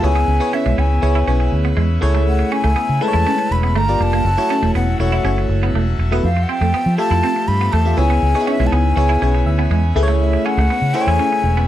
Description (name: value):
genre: pop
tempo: 121 BPM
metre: 4/4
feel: straight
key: A major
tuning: A4 = 440 Hz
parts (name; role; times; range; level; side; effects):
- breathy hollow jazz flute; melody; 0.0-11.7 s; E5 to B5; -21 LUFS; left 1 dB; none
- FM electric piano; accompaniment; 0.0-11.7 s; G#3 to G#5; -21 LUFS; left 1 dB; analog chorus
- pipe organ, full organ; sustained chords; 0.0-11.7 s; C#3 to E5; -29 LUFS; left 2 dB; none
- electric guitar at the edge of break-up; riff; 0.0-11.7 s; G#3 to E4; -24 LUFS; right 4 dB; analog chorus
- vintage muted fingered electric bass; bass; 0.0-11.7 s; E1 to F3; -16 LUFS; equal; none
room: little or no reverb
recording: dry, close 1970s-style studio recording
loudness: -14 LUFS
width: side -12 dB against mid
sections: 0.0-11.7 A section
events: FM electric piano fill 9.2-10.2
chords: 0.0 C#m7; 2.0 Amaj7/C#; 3.8 Gm7; 4.3 F#m7; 6.2 Fmaj9; 8.0 C#m7; 10.0 Amaj7/C#